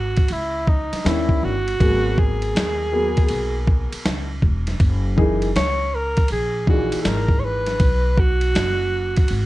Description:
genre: hip hop, jazz-hop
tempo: 80 BPM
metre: 4/4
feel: swing 66% on 16ths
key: G# minor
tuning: A4 = 440 Hz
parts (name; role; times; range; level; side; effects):
- clear alto saxophone; melody; 0.0-9.5 s; D#4 to C#5; -23 LUFS; right 1 dB; none
- upright bass; bass; 0.0-9.5 s; E1 to D#2; -24 LUFS; equal; none
- dusty soul sampler-style drum kit; drums; 0.2-9.5 s; hi-hat, kick drum, ride cymbal, snare drum; -21 LUFS; equal; none
- dark concert grand piano; accompaniment; 1.0-7.8 s; A#2 to G#4; -24 LUFS; left 2 dB; none
room: light reverb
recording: dark, warm production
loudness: -17 LUFS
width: side -17 dB against mid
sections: 0.0-9.5 A section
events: alto saxophone solo 0.0-9.5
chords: 0.0 C#madd9; 1.1 D#7b9; 1.8 G#m9; 4.8 F#13; 7.8 B5

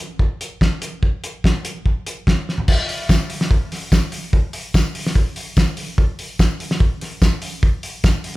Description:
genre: rock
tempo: 146 BPM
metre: 4/4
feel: straight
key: none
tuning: none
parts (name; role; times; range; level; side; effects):
- cloth-damped thuddy drum kit; drums; 0.2-8.3 s; crash cymbal, hi-hat, kick drum, snare drum, toms; -17 LUFS; equal; none
- tambourine; percussion; 3.1-8.1 s; none; -36 LUFS; left 3 dB; none
room: light reverb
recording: none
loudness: -17 LUFS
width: side -19 dB against mid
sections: 0.0-2.7 A section; 2.7-8.4 B section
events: drum fill 2.5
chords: none

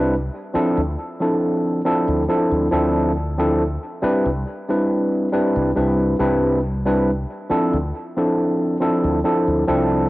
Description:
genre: vaporwave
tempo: 69 BPM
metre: 4/4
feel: straight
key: unclear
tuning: A4 = 441 Hz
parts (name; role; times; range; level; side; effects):
- overdriven tine electric piano; accompaniment; 0.0-10.1 s; F3 to B4; -18 LUFS; equal; wide subtle chorus, vintage 12-bit sampler grit, cassette tape, analog delay
- mellow fretless electric bass; bass; 0.0-10.1 s; C2 to D2; -24 LUFS; equal; transformer saturation, wide subtle chorus
room: moderate spring reverb, RT60 2.0 s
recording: home recording on cassette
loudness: -17 LUFS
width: side -18 dB against mid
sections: 0.0-10.1 A section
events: none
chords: 0.0 Cmaj9; 0.5 Dm9; 4.0 Cmaj9; 7.5 Dm9

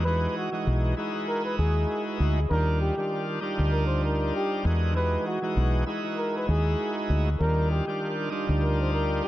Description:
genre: hip hop, boom-bap hip-hop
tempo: 98 BPM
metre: 4/4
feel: swing 54% on 16ths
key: unclear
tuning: A4 = 441 Hz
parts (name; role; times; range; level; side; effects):
- trumpet with bucket mute; melody; 0.0-9.3 s; F#4 to C5; -31 LUFS; equal; analog delay
- bright tonewheel organ; accompaniment; 0.0-9.3 s; Eb3 to F#4; -29 LUFS; equal; overdrive, slow rotary speaker, cassette tape, analog delay
- deep dub fingered electric bass; bass; 0.0-9.2 s; B1 to E2; -24 LUFS; equal; none
room: little or no reverb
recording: echo-heavy mix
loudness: -24 LUFS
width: side -15 dB against mid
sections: 0.0-9.3 A section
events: none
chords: 0.0 Emaj9; 2.5 Ebmaj9; 4.7 Emaj9; 7.4 Ebmaj9

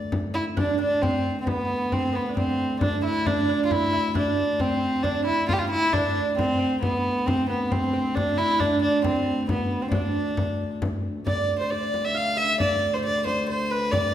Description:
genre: medieval dance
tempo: 135 BPM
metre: 3/4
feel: straight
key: D dorian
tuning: A4 = 436 Hz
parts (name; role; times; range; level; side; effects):
- warm violin; melody; 0.0-14.1 s; B3 to F5; -24 LUFS; left 1 dB; none
- warm viola da gamba; drone; 0.0-14.1 s; D2; -32 LUFS; left 2 dB; none
- frame drum; percussion; 0.1-14.1 s; none; -29 LUFS; left 1 dB; none
- lute; second line; 0.3-14.1 s; B3 to F5; -29 LUFS; right 6 dB; none
room: wet recital hall reverb, RT60 1.6 s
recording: minimal, uncompressed stereo recording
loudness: -22 LUFS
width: side -10 dB against mid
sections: 0.6-11.3 A section; 11.3-14.1 B section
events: none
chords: none

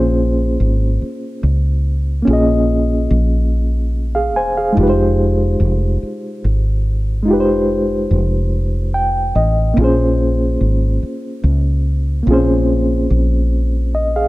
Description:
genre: slow six-eight R&B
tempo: 48 BPM (dotted quarters)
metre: 6/8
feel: straight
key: Bb minor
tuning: A4 = 440 Hz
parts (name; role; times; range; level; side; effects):
- reed electric piano; accompaniment; 0.0-14.3 s; Ab3 to Ab5; -17 LUFS; equal; overdrive, fast tremolo
- woody fretless electric bass; bass; 0.0-14.3 s; E1 to Db2; -16 LUFS; equal; wide subtle chorus
room: little or no reverb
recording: dark, warm production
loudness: -14 LUFS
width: side -18 dB against mid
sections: 0.0-14.3 A section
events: reed electric piano fill 8.5-9.8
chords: 0.0 Bbm9; 4.8 Fm9; 9.8 Bbm9

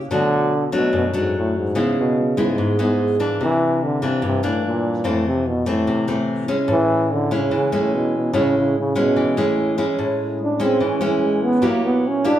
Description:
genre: bossa nova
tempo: 146 BPM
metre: 4/4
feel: straight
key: A major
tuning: A4 = 440 Hz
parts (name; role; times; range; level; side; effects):
- nylon-string guitar; accompaniment; 0.0-12.4 s; F2 to G4; -20 LUFS; equal; none
- dark trombone; melody; 0.1-12.4 s; G#2 to D4; -20 LUFS; equal; none
- dark French horn section; sustained chords; 10.0-12.4 s; A2 to E4; -31 LUFS; left 1 dB; none
room: wet large studio reverb, RT60 0.8 s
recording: band playing live in one room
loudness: -17 LUFS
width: side -11 dB against mid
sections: 0.0-10.0 A section; 10.0-12.4 B section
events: trombone solo 10.0-12.4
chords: 0.1 Bm7; 1.8 C#m7; 3.4 C9; 5.0 Fmaj7; 6.7 Amaj7; 11.6 F#7b9

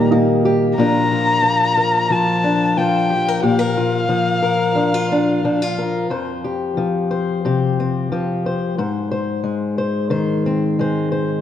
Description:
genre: acoustic folk duo or small band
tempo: 90 BPM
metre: 4/4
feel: straight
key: Bb major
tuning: A4 = 440 Hz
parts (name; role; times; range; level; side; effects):
- rich erhu; melody; 0.0-5.8 s; F5+25c to Bb5; -19 LUFS; left 2 dB; none
- fingerpicked acoustic archtop guitar; accompaniment; 0.0-11.4 s; F2 to C5; -17 LUFS; left 2 dB; none
- warm upright piano; arpeggios; 0.0-0.8 s; Eb3 to G4; -19 LUFS; right 8 dB; none
room: moderate scoring stage reverb, RT60 2.1 s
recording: dark, warm production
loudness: -16 LUFS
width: side -10 dB against mid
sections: 0.8-11.4 A section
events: none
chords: 0.0 Eb; 0.8 Bb; 6.1 Fsus2; 8.8 Ab

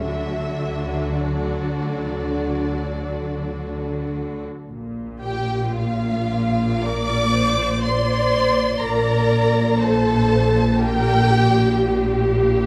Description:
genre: classical, slow romantic movement for string orchestra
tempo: 50-65 BPM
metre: 4/4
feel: rubato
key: D major, Bb major from 4.7 s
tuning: A4 = 436 Hz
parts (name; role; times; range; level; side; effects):
- rich studio violin section; melody; 0.0-12.2 s; D5 to D6; -28 LUFS; equal; none
- warm studio violin section; second line; 0.0-12.2 s; F4 to D5; -28 LUFS; equal; none
- warm studio viola section; accompaniment; 0.0-12.7 s; F#3 to D5; -28 LUFS; equal; none
- dark studio double bass section; bass; 0.0-12.7 s; Bb1 to D2; -26 LUFS; equal; none
- warm studio cello section; bass; 0.0-12.7 s; Bb2 to D3; -27 LUFS; equal; none
room: moderate recital hall reverb, RT60 1.4 s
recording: none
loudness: -20 LUFS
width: mono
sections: 0.0-4.7 A section; 4.7-12.7 B section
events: none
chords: 0.0 D; 4.7 Bb

